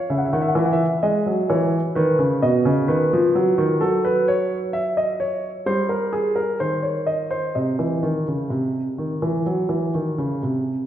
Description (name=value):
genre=classical, baroque-style two-part invention for grand piano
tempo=64 BPM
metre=4/4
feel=straight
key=unclear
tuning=A4 = 440 Hz
part: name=warm grand piano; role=solo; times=0.0-10.9 s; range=B2 to F#5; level=-19 LUFS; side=equal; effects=none
room=wet recital hall reverb, RT60 1.7 s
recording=heard from further back in the room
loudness=-19 LUFS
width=side -11 dB against mid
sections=0.0-10.9 A section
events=none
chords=0.1 F#5/C#; 2.0 B; 3.8 D#m7/F#; 5.7 D#7/G; 7.6 Cm